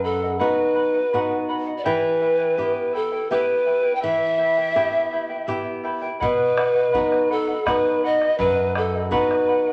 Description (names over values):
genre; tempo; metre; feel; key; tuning
andean folk, Andean ensemble; 83 BPM; 3/4; straight; unclear; A4 = 438 Hz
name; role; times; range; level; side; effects
breathy polished pan flute; melody; 0.0-9.7 s; A4 to G5; -22 LUFS; equal; none
charango; accompaniment; 0.0-9.7 s; E4 to G5; -30 LUFS; equal; none
flamenco guitar; accompaniment; 0.0-9.7 s; F#2 to G4; -30 LUFS; equal; none
bombo; percussion; 6.2-9.6 s; none; -34 LUFS; equal; none
room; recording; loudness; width
wet large studio reverb, RT60 1.5 s; nothing above 10.6 kHz; -21 LUFS; mono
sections
0.0-6.2 A section; 6.2-9.7 A section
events
none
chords
0.0 B; 1.9 Em; 6.2 B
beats
0.41 1.14 | 1.86 2.59 3.31 | 4.04 4.76 5.49 | 6.22 6.94 7.67 | 8.39 9.12